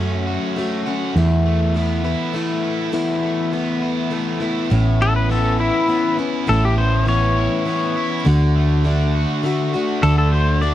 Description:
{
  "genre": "folk rock and heartland rock",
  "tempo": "102 BPM",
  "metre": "3/4",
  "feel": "straight",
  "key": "A major",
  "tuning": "A4 = 440 Hz",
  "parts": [
    { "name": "picked plugged-in steel-string acoustic guitar", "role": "accompaniment", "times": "0.0-10.7 s", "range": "E2 to F#4", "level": "-22 LUFS", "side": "left 4 dB", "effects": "none" },
    { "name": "cranked stack guitar", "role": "riff", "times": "0.0-10.7 s", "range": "E2 to F#4", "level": "-24 LUFS", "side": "right 3 dB", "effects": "overdrive" },
    { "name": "hollow-body short-scale fingered electric bass", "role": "bass", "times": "0.0-10.7 s", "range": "A1 to F#2", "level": "-17 LUFS", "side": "right 1 dB", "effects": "none" },
    { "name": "pedal steel guitar", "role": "melody", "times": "5.0-10.7 s", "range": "E4 to D5", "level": "-21 LUFS", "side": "left 2 dB", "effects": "none" }
  ],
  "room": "little or no reverb",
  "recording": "dry, close 1970s-style studio recording",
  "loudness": "-16 LUFS",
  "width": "side -12 dB against mid",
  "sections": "0.0-4.7 A section; 4.7-10.7 B section",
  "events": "break 2.9-4.7; pedal steel guitar solo 4.7-10.7",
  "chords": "0.0 F#m; 1.2 Esus4; 4.7 Aadd9; 8.3 D"
}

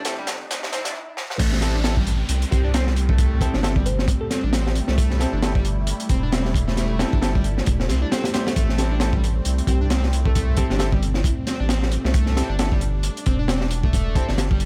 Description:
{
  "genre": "breakbeat, breaks",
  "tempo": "134 BPM",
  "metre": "4/4",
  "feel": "swing 57% on 16ths",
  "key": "A minor",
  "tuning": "A4 = 439 Hz",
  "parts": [
    { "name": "phased analog pad", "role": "sustained chords", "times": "0.0-14.7 s", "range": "G3 to E4", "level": "-34 LUFS", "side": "equal", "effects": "phaser, chorus, sidechain pumping" },
    { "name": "saturated sub bass", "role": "bass", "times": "0.0-14.7 s", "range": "E1 to C2", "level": "-24 LUFS", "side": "equal", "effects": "none" },
    { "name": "crunchy breakbeat drum kit", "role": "drums", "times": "0.0-14.7 s", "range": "crash cymbal, hi-hat, kick drum, snare drum", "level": "-25 LUFS", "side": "equal", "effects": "high-pass filter on kick, high-pass filter on hats, high-pass filter on cymbals, high-pass filter on snare, high-pass filter on room" },
    { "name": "riser and downlifter", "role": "sound effects", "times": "0.0-5.0 s", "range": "none", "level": "-38 LUFS", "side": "equal", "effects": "none" },
    { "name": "clear concert grand piano", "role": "stabs", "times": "0.1-14.3 s", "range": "C4 to C5", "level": "-33 LUFS", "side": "equal", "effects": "digital delay" },
    { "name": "overdriven synth lead", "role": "riff", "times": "0.2-14.6 s", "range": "G3 to D4", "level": "-32 LUFS", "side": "equal", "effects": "subtle chorus, digital delay" },
    { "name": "bell-like FM electric piano", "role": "melody", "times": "2.5-4.4, 9.7-11.3 s", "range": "E4 to C5", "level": "-35 LUFS", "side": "equal", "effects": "chorus, old record sound, digital delay" }
  ],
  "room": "little or no reverb",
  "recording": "high-pass filter",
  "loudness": "-21 LUFS",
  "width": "mono",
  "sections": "0.0-1.4 A section; 1.4-14.7 B section",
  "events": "build-up 0.0-1.4; drum fill 0.0-0.9, 1.2; riser 0.0-0.9; stop 0.9-1.4; drop 1.4-14.7",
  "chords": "0.0 Am7"
}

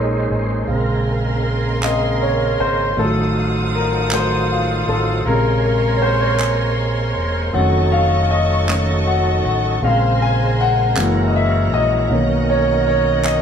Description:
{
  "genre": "slow gospel",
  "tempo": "53 BPM (dotted quarters)",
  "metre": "6/8",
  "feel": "straight",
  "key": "Bb minor",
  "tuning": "A4 = 440 Hz",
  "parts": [
    { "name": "warm concert grand piano", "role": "accompaniment", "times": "0.0-13.4 s", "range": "Bb2 to Ab5", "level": "-18 LUFS", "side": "left 1 dB", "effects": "none" },
    { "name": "overdriven tonewheel organ", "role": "sustained chords", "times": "0.0-13.4 s", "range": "B2 to Db5", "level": "-24 LUFS", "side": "right 2 dB", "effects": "fast rotary speaker, chorus vibrato" },
    { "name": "fingered electric bass", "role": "bass", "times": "0.0-13.4 s", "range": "E1 to B1", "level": "-20 LUFS", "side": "right 1 dB", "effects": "none" },
    { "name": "warm studio string section", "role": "sustained chords", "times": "0.7-13.4 s", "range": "Fb4 to Eb6", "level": "-27 LUFS", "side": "equal", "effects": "none" },
    { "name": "group handclap", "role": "percussion", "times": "1.8-13.4 s", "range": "none", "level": "-24 LUFS", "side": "right 2 dB", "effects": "none" }
  ],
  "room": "moderate large studio reverb, RT60 0.9 s",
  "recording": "band playing live in one room",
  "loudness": "-15 LUFS",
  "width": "side -7 dB against mid",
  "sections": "0.7-13.4 A section",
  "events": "grand piano solo 0.7-13.4",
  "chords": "0.0 Bbm11; 0.7 Bbm9; 3.0 F7b9/A; 5.3 Bbm9; 7.5 F7b9b13; 9.8 Bbm9; 11.0 Gb7; 12.1 Bmaj9"
}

